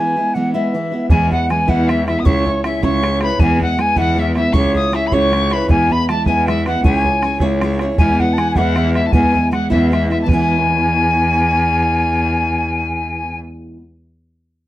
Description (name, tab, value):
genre	celtic folk, Celtic jig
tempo	104 BPM (dotted quarters)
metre	6/8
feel	straight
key	E major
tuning	A4 = 440 Hz
part	wooden flute	melody	0.0-13.4 s	B4 to B5	-20 LUFS	equal	none
part	picked steel-string acoustic guitar	accompaniment	0.0-13.8 s	E3 to C#5	-19 LUFS	right 1 dB	none
part	tin whistle	second line	1.1-13.4 s	E5 to D#6	-22 LUFS	left 4 dB	none
part	rich cello	bass	1.1-13.4 s	C#2 to E2	-19 LUFS	equal	none
part	bodhran	percussion	1.1-10.5 s	none	-18 LUFS	right 1 dB	none
room	moderate studio reverb, RT60 0.7 s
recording	none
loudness	-13 LUFS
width	side -14 dB against mid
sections	0.0-1.1 A section; 1.1-10.3 A section; 10.3-12.6 B section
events	none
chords	0.0 E; 2.2 C#m; 3.4 E; 4.5 C#m; 5.7 E; 6.8 C#m; 8.0 E